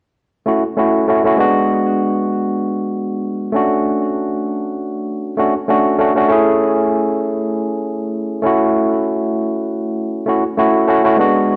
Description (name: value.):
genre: chillout.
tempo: 98 BPM.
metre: 4/4.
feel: swing 54% on 16ths.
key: unclear.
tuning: A4 = 440 Hz.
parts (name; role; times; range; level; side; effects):
barky tine electric piano; accompaniment; 0.5-11.6 s; G#3 to G#4; -17 LUFS; equal; overdrive, low-pass filter, digital delay.
room: wet recital hall reverb, RT60 1.5 s.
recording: none.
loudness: -17 LUFS.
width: mono.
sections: 0.0-11.6 A section.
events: none.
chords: 0.0 A6; 1.4 G#m7b5; 3.9 Dmaj7/A; 6.3 F#m9 (rootless); 8.8 A6.